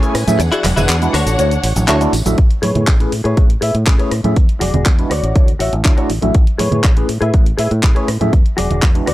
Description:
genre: filtered disco house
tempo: 121 BPM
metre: 4/4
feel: straight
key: A major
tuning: A4 = 440 Hz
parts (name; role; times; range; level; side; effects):
- overdriven tine electric piano; accompaniment; 0.0-9.1 s; G#3 to E5; -20 LUFS; equal; phaser, vintage 12-bit sampler grit, sidechain pumping, low-pass filter
- dark studio string section; sustained chords; 0.0-2.4 s; C#4 to G#5; -23 LUFS; equal; vintage 12-bit sampler grit, sidechain pumping, low-pass filter
- direct-recorded clean electric guitar; riff; 0.0-9.1 s; D4 to E5; -20 LUFS; left 2 dB; ensemble chorus, sidechain pumping, low-pass filter
- house drum kit; drums; 0.0-9.1 s; cabasa, handclaps, hi-hat, rim click; -22 LUFS; equal; sidechain pumping on hats, sidechain pumping on perc
- fingered electric bass; bass; 0.1-9.1 s; E1 to A2; -18 LUFS; equal; sidechain pumping, low-pass filter
- tambourine and congas; percussion; 0.1-9.1 s; none; -21 LUFS; right 2 dB; sidechain pumping on perc, low-pass filter on perc
- electronic kick drum; drums; 2.4-8.9 s; none; -12 LUFS; equal; none
room: little or no reverb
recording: dry, gritty hardware recording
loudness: -12 LUFS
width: side -16 dB against mid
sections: 0.0-2.4 A section; 2.4-9.1 B section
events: drop 0.0-2.4; kick drops out 0.4-2.4; filter sweep 2.4-9.1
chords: 0.4 E9; 1.1 Dmaj7; 2.4 Amaj9; 4.4 E9; 5.1 Dmaj7; 6.3 Amaj9; 8.3 E9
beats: | 0.40 0.89 1.39 1.89 | 2.38 2.88 3.37 3.87 | 4.37 4.86 5.36 5.85 | 6.35 6.84 7.34 7.84 | 8.33 8.83

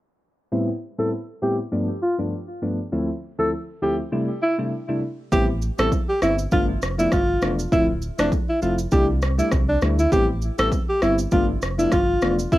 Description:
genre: afrobeats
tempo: 100 BPM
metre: 4/4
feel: swing 55% on 16ths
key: unclear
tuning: A4 = 443 Hz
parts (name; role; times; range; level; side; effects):
- soft electric-piano-like synth keys; accompaniment; 0.5-12.6 s; D2 to E4; -25 LUFS; left 1 dB; chorus, cassette tape, plate reverb
- breathy alto saxophone; melody; 1.0-12.6 s; D4 to A4; -22 LUFS; equal; cassette tape, plate reverb, analog delay
- sub bass with octave; bass; 5.3-12.6 s; D1 to D2; -25 LUFS; equal; none
- deep house drum kit; drums; 5.3-12.6 s; kick drum, rim click, shaker; -24 LUFS; equal; none
room: light reverb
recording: home recording on cassette, low-pass filter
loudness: -20 LUFS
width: side -16 dB against mid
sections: 0.5-5.3 A section; 5.3-12.6 B section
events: filter sweep 0.5-5.3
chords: 0.5 Am7; 1.7 G7; 2.9 Dm7; 4.1 C6; 5.3 Am7; 6.5 G7; 7.7 Dm7; 8.9 C6; 10.1 Am7; 11.3 G7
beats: | 0.52 1.12 1.72 2.32 | 2.92 3.52 4.12 4.72 | 5.32 5.92 6.52 7.12 | 7.72 8.32 8.92 9.52 | 10.12 10.72 11.32 11.92 | 12.52

